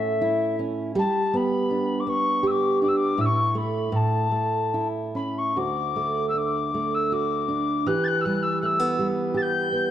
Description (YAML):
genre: celtic folk, Celtic slow air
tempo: 70-83 BPM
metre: 3/4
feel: rubato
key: D major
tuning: A4 = 440 Hz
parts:
  - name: mellow wooden whistle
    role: melody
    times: 0.0-9.9 s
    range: E5 to A6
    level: -26 LUFS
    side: left 4 dB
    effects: none
  - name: fingerpicked steel-string acoustic guitar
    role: accompaniment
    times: 0.0-9.9 s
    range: D2 to G4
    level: -24 LUFS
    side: right 2 dB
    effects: none
room: moderate concert hall reverb, RT60 2.0 s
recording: dark, warm production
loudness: -22 LUFS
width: side -11 dB against mid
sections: 0.0-9.9 A section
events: none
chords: 0.0 A; 1.0 G; 3.2 A5; 3.9 A; 5.6 D; 7.9 Em